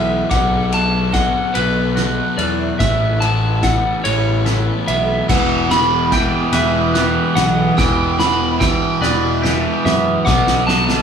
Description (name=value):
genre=post-rock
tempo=48 BPM (dotted quarters)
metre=6/8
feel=straight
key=E dorian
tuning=A4 = 440 Hz
part: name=electric slide guitar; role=melody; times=0.0-11.0 s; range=B4 to B5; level=-20 LUFS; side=equal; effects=none
part: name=rich chamber string section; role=sustained chords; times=0.0-11.0 s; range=C#3 to G4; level=-29 LUFS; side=equal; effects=none
part: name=glockenspiel with hard plastic mallets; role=arpeggios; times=0.0-11.0 s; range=D6 to G7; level=-29 LUFS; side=right 4 dB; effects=none
part: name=twangy electric guitar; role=arpeggios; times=0.0-11.0 s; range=B2 to C#5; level=-27 LUFS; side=left 1 dB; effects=none
part: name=sludgy distorted guitar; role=riff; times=0.0-11.0 s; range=E2 to B3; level=-23 LUFS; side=left 6 dB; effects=overdrive
part: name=fuzz picked electric bass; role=bass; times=0.0-11.0 s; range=E1 to F#2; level=-20 LUFS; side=equal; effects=overdrive
part: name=loose indie drum kit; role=drums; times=0.3-11.0 s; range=crash cymbal, kick drum, ride cymbal, snare drum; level=-21 LUFS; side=equal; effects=none
part: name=overdriven semi-hollow guitar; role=riff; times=5.3-11.0 s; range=E2 to B3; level=-19 LUFS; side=right 5 dB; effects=phaser
room=wet small room reverb, RT60 0.5 s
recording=band playing live in one room, studio ambience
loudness=-14 LUFS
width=side -7 dB against mid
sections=0.0-11.0 A section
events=build-up 0.0-11.0; drum fill 0.0-11.0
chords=0.3 Bm7; 2.8 Aadd9; 5.3 Em; 10.3 Bm7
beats=| 0.31 1.56 | 2.80 4.05 | 5.29 6.54 | 7.78 9.03 | 10.27